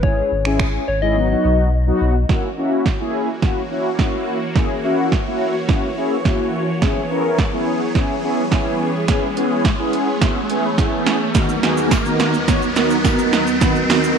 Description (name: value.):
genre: dance-pop.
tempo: 106 BPM.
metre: 4/4.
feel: straight.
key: unclear.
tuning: A4 = 441 Hz.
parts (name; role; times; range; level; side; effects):
soft struck synth lead; melody; 0.0-2.0 s; C#5 to D#5; -23 LUFS; left 4 dB; chorus, tape echo.
mellow synth brass; accompaniment; 0.0-14.2 s; D#3 to C#5; -20 LUFS; equal; chorus, sidechain pumping.
warm sub bass; bass; 0.0-2.2 s; G#1 to B1; -19 LUFS; left 1 dB; sidechain pumping.
punchy analog drum machine; drums; 0.0-14.2 s; finger snaps, hi-hat, kick drum, shaker, snare drum; -19 LUFS; right 2 dB; none.
supersaw pad; sustained chords; 2.3-14.2 s; D#2 to D#5; -25 LUFS; equal; phaser, sidechain pumping.
riser; sound effects; 5.4-14.2 s; none; -24 LUFS; equal; none.
tambourine; percussion; 11.9-13.2 s; none; -38 LUFS; left 13 dB; none.
room: moderate echo chamber reverb, RT60 2.0 s.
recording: 1960s-style stereo.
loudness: -16 LUFS.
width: side -6 dB against mid.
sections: 0.0-2.3 A section; 2.3-14.2 B section.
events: drums muted 1.2-2.3; build-up 2.3-14.2; drum fill 2.3-14.2; riser 5.4-14.2.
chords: 0.0 C#m/G#; 1.2 B; 2.3 F#7; 6.8 C#m7; 11.3 Bmaj7/D#.